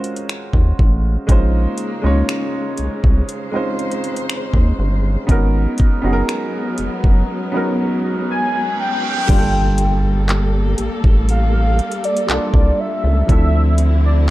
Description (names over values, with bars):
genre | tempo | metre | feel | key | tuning
contemporary R&B | 60 BPM | 4/4 | straight | unclear | A4 = 440 Hz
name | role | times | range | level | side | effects
warm baby grand piano | accompaniment | 0.0-14.3 s | F3 to Db5 | -22 LUFS | right 1 dB | none
smooth R&B drum kit | drums | 0.0-14.0 s | crash cymbal, finger snaps, handclaps, hi-hat, kick drum | -16 LUFS | equal | none
rubbery square bass | bass | 0.5-14.3 s | Gb1 to Eb2 | -16 LUFS | equal | none
warm studio string section | sustained chords | 1.3-14.3 s | Db3 to C5 | -26 LUFS | left 1 dB | none
reverse cymbal and impact | sound effects | 8.3-13.3 s | none | -29 LUFS | right 3 dB | none
warm velvety synth lead | melody | 8.3-14.2 s | D5 to Ab5 | -21 LUFS | equal | chorus, tape echo
room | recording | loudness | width
digital ambience | dark, warm production | -14 LUFS | side -16 dB against mid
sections
0.0-9.3 A section; 9.3-14.3 B section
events
break 7.3-9.3; reverse cymbal 8.3-9.3; impact 9.3-13.3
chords
0.0 Ebm11; 1.3 Bbm11; 5.3 Abm11; 9.3 Gm9; 13.3 Dm9